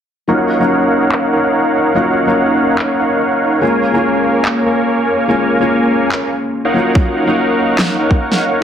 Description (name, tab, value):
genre	future bass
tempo	144 BPM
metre	4/4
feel	swing 54% on 16ths, half-time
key	Eb minor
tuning	A4 = 440 Hz
part	felt-muted upright piano	accompaniment	0.3-8.6 s	Gb3 to F4	-17 LUFS	left 2 dB	sidechain pumping, dub echo
part	supersaw chords	riff	0.3-8.6 s	Bb3 to Ab5	-14 LUFS	right 1 dB	sidechain pumping, low-pass filter, dub echo
part	electronic handclaps and snare drum	drums	1.1-8.4 s	none	-19 LUFS	equal	low-pass filter on snare
part	electronic kick drum	drums	7.0-8.2 s	none	-12 LUFS	equal	none
room	wet digital room reverb, RT60 1.1 s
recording	dense, heavily limited modern master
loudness	-12 LUFS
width	side -8 dB against mid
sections	0.3-8.6 A section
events	none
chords	0.3 Ebm7; 3.6 Bbm7; 6.7 Ebm7